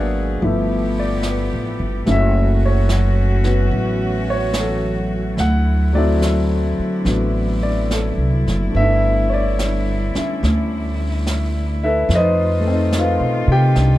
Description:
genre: jazz ballad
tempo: 72 BPM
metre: 4/4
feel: swing 68% on 8ths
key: unclear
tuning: A4 = 440 Hz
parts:
  - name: warm concert grand piano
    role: accompaniment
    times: 0.0-14.0 s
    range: F3 to G5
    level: -20 LUFS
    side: left 1 dB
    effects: none
  - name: warm chamber cello section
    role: sustained chords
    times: 0.0-14.0 s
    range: B2 to G#4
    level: -25 LUFS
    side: equal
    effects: none
  - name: upright bass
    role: bass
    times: 0.0-14.0 s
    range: F#1 to C3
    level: -18 LUFS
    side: equal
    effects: none
  - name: jazz brush drum kit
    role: drums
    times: 0.4-14.0 s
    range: brushed snare drum, hi-hat, snare drum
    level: -29 LUFS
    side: right 2 dB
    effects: none
room: light reverb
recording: dark, warm production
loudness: -16 LUFS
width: side -15 dB against mid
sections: 0.0-14.0 A section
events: none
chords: 0.4 G13; 2.1 F#m7; 5.4 D9; 8.8 G69; 12.1 F7#11

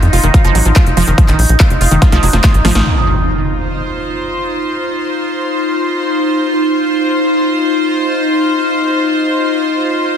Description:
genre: psychedelic trance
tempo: 143 BPM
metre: 4/4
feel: straight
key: unclear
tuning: A4 = 440 Hz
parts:
  - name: overtone-sweeping drone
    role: sustained chords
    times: 0.0-10.2 s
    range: Eb4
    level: -16 LUFS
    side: left 1 dB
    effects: chorus, built-in reverb, sidechain pumping
  - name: tight sequencer bass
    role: bass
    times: 0.0-2.8 s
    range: F1 to F2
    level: -12 LUFS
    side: equal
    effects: none
  - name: big-room dance drum kit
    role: drums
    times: 0.0-2.8 s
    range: handclaps, hi-hat, snare drum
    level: -18 LUFS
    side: equal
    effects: none
  - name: wide unison pluck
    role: riff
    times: 0.1-2.8 s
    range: Eb3 to F4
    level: -18 LUFS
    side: right 1 dB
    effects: auto-pan, sidechain pumping, digital delay
  - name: electronic kick drum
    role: drums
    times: 0.3-2.5 s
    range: none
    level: -10 LUFS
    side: equal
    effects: none
  - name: impact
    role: sound effects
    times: 2.9-4.5 s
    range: none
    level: -18 LUFS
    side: equal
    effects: none
  - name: clear studio string section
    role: texture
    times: 2.9-10.2 s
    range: F4 to C6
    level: -17 LUFS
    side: equal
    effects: sidechain pumping
room: light reverb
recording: dense, heavily limited modern master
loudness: -11 LUFS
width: side -8 dB against mid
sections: 0.0-2.9 A section; 2.9-10.2 B section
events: drum fill 2.0-2.9; band accent 2.8; impact 2.9-4.5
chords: 0.0 F5

